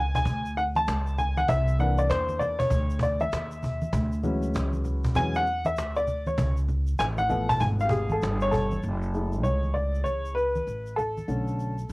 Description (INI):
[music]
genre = hip hop, jazz-hop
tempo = 98 BPM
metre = 4/4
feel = swing 63% on 16ths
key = F# minor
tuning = A4 = 436 Hz
[part]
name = warm upright piano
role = accompaniment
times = 0.0-11.9 s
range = D3 to A5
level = -27 LUFS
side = left 1 dB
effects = cassette tape
[part]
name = upright bass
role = bass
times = 0.0-11.9 s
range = F#1 to E2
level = -28 LUFS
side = equal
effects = none
[part]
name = cajon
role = drums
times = 0.1-8.7 s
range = none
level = -31 LUFS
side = equal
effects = cassette tape
[part]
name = tube shaker and congas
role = percussion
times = 0.2-11.9 s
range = none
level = -38 LUFS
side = right 2 dB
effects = none
[sound]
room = light reverb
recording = home recording on cassette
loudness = -24 LUFS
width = side -22 dB against mid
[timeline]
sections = 0.0-8.8 A section; 8.8-11.9 B section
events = upright piano solo 0.0-8.8, 8.8-11.9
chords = 0.0 Bm9 (rootless); 1.5 C9; 3.9 Dmaj9#11; 6.4 C#7b13; 8.8 F#m9; 11.3 Bm9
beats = 0.26 0.87 | 1.48 2.10 2.71 3.32 | 3.93 4.54 5.16 5.77 | 6.38 6.99 7.61 8.22 | 8.83 9.44 10.05 10.67 | 11.28 11.89